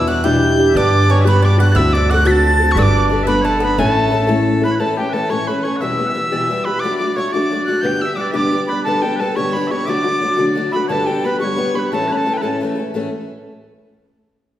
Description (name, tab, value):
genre	celtic folk, Celtic jig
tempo	118 BPM (dotted quarters)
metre	6/8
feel	straight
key	A mixolydian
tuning	A4 = 440 Hz
part	bright wooden whistle	melody	0.0-12.6 s	G5 to B6	-20 LUFS	equal	none
part	Irish bouzouki	second line	0.0-4.4 s	A3 to A4	-21 LUFS	right 4 dB	none
part	picked old ladder-braced acoustic guitar	accompaniment	0.0-13.1 s	E2 to A4	-18 LUFS	left 2 dB	none
part	upright bass	bass	0.0-4.8 s	G1 to G2	-16 LUFS	equal	none
part	loud bright bagpipes	second line	0.7-12.6 s	G4 to B5	-24 LUFS	left 1 dB	none
room	wet recital hall reverb, RT60 1.7 s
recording	heard from further back in the room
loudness	-14 LUFS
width	side -12 dB against mid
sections	0.0-4.8 A section; 4.8-12.9 B section; 12.9-14.0 C section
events	none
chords	0.0 Em7; 0.7 G; 1.8 D7; 2.8 Gadd9; 3.8 A; 5.8 Em; 6.8 D/F#; 7.8 G; 9.9 D; 10.9 G; 11.9 A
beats	0.24 | 0.74 1.25 | 1.76 2.26 | 2.77 3.27 | 3.78 4.29 | 4.80 5.30 | 5.81 6.32 | 6.83 7.34 | 7.85 8.36 | 8.86 9.37 | 9.88 10.39 | 10.90 11.41 | 11.92 12.43 | 12.94